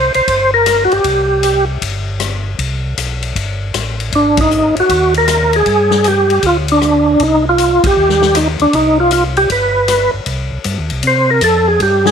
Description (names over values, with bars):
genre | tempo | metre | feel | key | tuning
soul jazz organ trio | 156 BPM | 4/4 | swing 66% on 8ths | C minor | A4 = 440 Hz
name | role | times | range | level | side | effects
overdriven tonewheel organ | melody | 0.0-1.6, 4.2-12.1 s | D4 to C5 | -11 LUFS | right 1 dB | slow rotary speaker, chorus vibrato
mellow tonewheel organ | bass | 0.0-12.1 s | G1 to C3 | -18 LUFS | equal | chorus vibrato, slow rotary speaker
swinging big-band drum kit | drums | 0.1-12.1 s | hi-hat, kick drum, ride cymbal, rim click, snare drum | -20 LUFS | left 6 dB | none
room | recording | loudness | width
light reverb, small room ambience | 1960s-style stereo | -11 LUFS | side -7 dB against mid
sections
0.0-10.3 A section; 10.3-12.1 B section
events
band accent 4.3, 7.8; tonewheel organ solo 10.3-12.1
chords
0.0 C5; 4.1 Ab5; 5.7 G5; 7.2 Cm; 9.5 G; 10.3 Cm